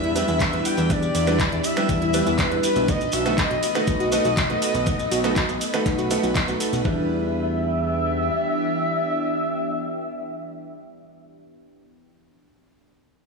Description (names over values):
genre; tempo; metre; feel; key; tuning
progressive house; 121 BPM; 4/4; straight; E minor; A4 = 440 Hz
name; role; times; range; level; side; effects
expressive portamento lead; melody; 0.0-11.4 s; B4 to G5; -26 LUFS; left 1 dB; analog chorus, tape echo
evolving wavetable pad; sustained chords; 0.1-11.4 s; E3 to G4; -29 LUFS; equal; chorus, built-in reverb, sidechain pumping
wide unison pluck; arpeggios; 0.0-7.1 s; D4 to F#6; -29 LUFS; left 1 dB; sidechain pumping, tape echo
clear baby grand piano; stabs; 0.0-11.4 s; G3 to B4; -28 LUFS; right 4 dB; sidechain pumping, tape echo
fat analog bass; bass; 0.0-8.3 s; B1 to E2; -26 LUFS; left 1 dB; sidechain pumping
pop drum kit; drums; 0.0-6.8 s; finger snaps, handclaps, hi-hat, ride cymbal; -28 LUFS; equal; sidechain pumping on hats, studio reverb, sidechain pumping on cymbals
drifting glass-harmonics texture; texture; 0.0-6.9 s; B4 to B5; -39 LUFS; equal; chorus, built-in reverb, sidechain pumping
maracas; percussion; 0.2-6.8 s; none; -34 LUFS; right 1 dB; none
electronic kick drum; drums; 0.4-7.0 s; none; -25 LUFS; left 1 dB; studio reverb
room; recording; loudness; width
light reverb; small room ambience; -20 LUFS; side -3 dB against mid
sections
0.0-6.8 A section; 6.8-10.8 B section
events
drop 0.0-6.8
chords
0.0 Em7; 2.9 B7; 6.8 Em7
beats
0.40 | 0.90 1.40 1.89 2.39 | 2.88 3.38 3.88 4.37 | 4.87 5.36 5.86 6.35 | 6.85 7.35 7.84 8.34 | 8.83 9.33 9.83 10.32